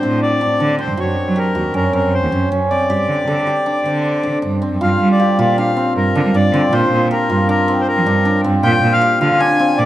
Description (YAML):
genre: contemporary instrumental, chamber music in an uneven meter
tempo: 157 BPM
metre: 5/4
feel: straight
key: G harmonic minor, G minor from 4.8 s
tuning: A4 = 440 Hz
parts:
  - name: accordion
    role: melody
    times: 0.0-9.9 s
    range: A#4 to Ab5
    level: -18 LUFS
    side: left 2 dB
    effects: none
  - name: hammered dulcimer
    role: arpeggios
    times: 0.0-9.9 s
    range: C4 to A4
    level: -17 LUFS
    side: equal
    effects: none
  - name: clear cello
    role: bass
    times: 0.0-9.9 s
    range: Eb2 to G3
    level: -18 LUFS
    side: right 2 dB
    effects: none
  - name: celesta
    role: texture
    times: 5.2-9.9 s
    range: F5 to G5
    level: -26 LUFS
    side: left 9 dB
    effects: none
room: moderate recital hall reverb, RT60 1.6 s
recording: close, detailed microphones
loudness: -13 LUFS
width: side -13 dB against mid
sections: 0.0-4.8 A section; 4.8-9.9 B section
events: none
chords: 0.0 D; 1.0 F#; 2.9 G5; 4.8 Gm7; 8.6 Bb